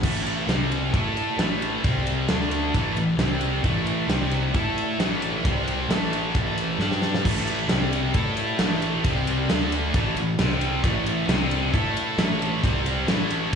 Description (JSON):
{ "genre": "hard rock", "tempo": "133 BPM", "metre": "4/4", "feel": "straight", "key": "A minor", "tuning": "A4 = 441 Hz", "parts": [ { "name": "distorted electric guitar", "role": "riff", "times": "0.0-13.6 s", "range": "A2 to A4", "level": "-31 LUFS", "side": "equal", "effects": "distortion, slapback echo" }, { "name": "scooped high-gain guitar", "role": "riff", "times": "0.0-13.6 s", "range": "A2 to A4", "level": "-28 LUFS", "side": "left 10 dB", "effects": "distortion" }, { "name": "scooped high-gain guitar", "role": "riff", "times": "0.0-13.6 s", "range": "A2 to A4", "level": "-28 LUFS", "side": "right 11 dB", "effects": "distortion" }, { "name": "fuzz picked electric bass", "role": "bass", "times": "0.0-13.6 s", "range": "A1 to A2", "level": "-28 LUFS", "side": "equal", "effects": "overdrive" }, { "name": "big rock drum kit", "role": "drums", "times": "0.0-13.6 s", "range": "crash cymbal, kick drum, ride cymbal, snare drum", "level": "-26 LUFS", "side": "equal", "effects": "vintage 12-bit sampler grit" } ], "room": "light reverb, studio reverb", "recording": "live gig heard through the venue's PA, club reverb", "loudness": "-21 LUFS", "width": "side -6 dB against mid", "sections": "0.0-7.2 A section; 7.2-13.6 A section", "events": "drum fill 6.8-7.2", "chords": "0.0 A5; 0.5 C5; 0.9 A5; 1.8 C5; 2.3 D5; 2.7 A5; 3.2 C5; 3.6 A5; 4.1 C5; 4.5 A5; 5.4 C5; 5.9 A5; 6.8 G5; 7.2 A5; 7.7 C5; 8.1 A5; 9.0 C5; 9.5 D5; 9.9 A5; 10.4 C5; 10.8 A5; 11.3 C5; 11.7 A5; 12.6 C5" }